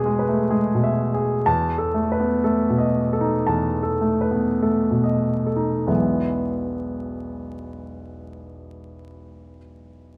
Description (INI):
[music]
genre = classical, romantic character piece for solo piano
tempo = 46-67 BPM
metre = 4/4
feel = rubato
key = E major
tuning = A4 = 439 Hz
[part]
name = clear baby grand piano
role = solo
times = 0.0-10.2 s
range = E1 to A5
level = -23 LUFS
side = equal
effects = none
[sound]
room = moderate large studio reverb, RT60 1.3 s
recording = close, detailed microphones, vinyl crackle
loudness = -22 LUFS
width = mono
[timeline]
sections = 0.0-5.9 A section; 5.9-10.2 B section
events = slowing down 0.0-5.9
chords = 0.0 E; 1.4 B7/E; 5.9 E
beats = 0.50 | 1.45 2.43 3.48 4.64 | 5.88 7.07 8.26 9.42